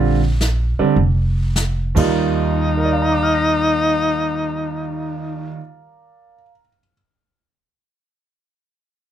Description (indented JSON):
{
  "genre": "jazz, small-group swing and bop",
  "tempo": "98 BPM",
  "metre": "4/4",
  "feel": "swing 69% on 8ths",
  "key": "Eb major",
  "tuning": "A4 = 440 Hz",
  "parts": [
    { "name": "clear upright piano", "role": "accompaniment", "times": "0.0-6.9 s", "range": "Eb2 to Bb6", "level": "-20 LUFS", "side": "right 5 dB", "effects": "none" },
    { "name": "upright bass", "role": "bass", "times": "0.0-5.5 s", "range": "F1 to Eb2", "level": "-20 LUFS", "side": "equal", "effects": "none" },
    { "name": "jazz brush drum kit", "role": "drums", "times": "0.4-2.1 s", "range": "brushed snare drum, crash cymbal, hi-hat, kick drum, snare drum", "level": "-25 LUFS", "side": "equal", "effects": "none" },
    { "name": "breathy tenor saxophone", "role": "melody", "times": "2.0-5.5 s", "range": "Eb4", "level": "-19 LUFS", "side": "left 3 dB", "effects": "none" }
  ],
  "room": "light reverb",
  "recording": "none",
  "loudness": "-16 LUFS",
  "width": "side -10 dB against mid",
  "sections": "0.0-2.2 A section; 2.2-7.1 B section",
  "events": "slowing down 0.0-2.2",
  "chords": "0.0 Bb69; 1.9 Ebadd9"
}